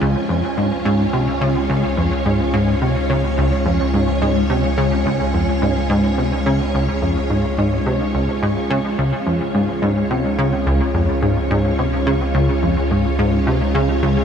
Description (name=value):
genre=ambient, sequencer-driven space music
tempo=107 BPM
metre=4/4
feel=straight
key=Db major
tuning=A4 = 436 Hz
part: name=string machine, full ensemble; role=sustained chords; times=0.0-14.2 s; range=Ab3 to Db5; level=-21 LUFS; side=equal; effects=ensemble chorus
part: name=plucky analog bass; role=riff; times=0.0-14.2 s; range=Db2 to Db3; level=-18 LUFS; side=equal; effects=wide subtle chorus, tape echo
part: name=warm sub bass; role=bass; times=0.0-14.2 s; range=Db2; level=-24 LUFS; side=equal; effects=none
part: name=wind-like tuned noise texture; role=texture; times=0.0-14.2 s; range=Db4 to Db5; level=-29 LUFS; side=right 3 dB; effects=built-in reverb
part: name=warbly dusty pluck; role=arpeggios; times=9.1-14.2 s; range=none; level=barely audible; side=none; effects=none
room=moderate huge ambient reverb, RT60 7.5 s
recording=dark, warm production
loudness=-16 LUFS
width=side -7 dB against mid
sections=0.0-9.0 A section; 9.0-14.2 A section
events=none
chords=0.0 Db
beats=| 0.01 0.57 1.13 1.69 | 2.25 2.81 3.38 3.94 | 4.50 5.06 5.62 6.18 | 6.74 7.30 7.86 8.42 | 8.98 9.54 10.10 10.66 | 11.23 11.79 12.35 12.91 | 13.47 14.03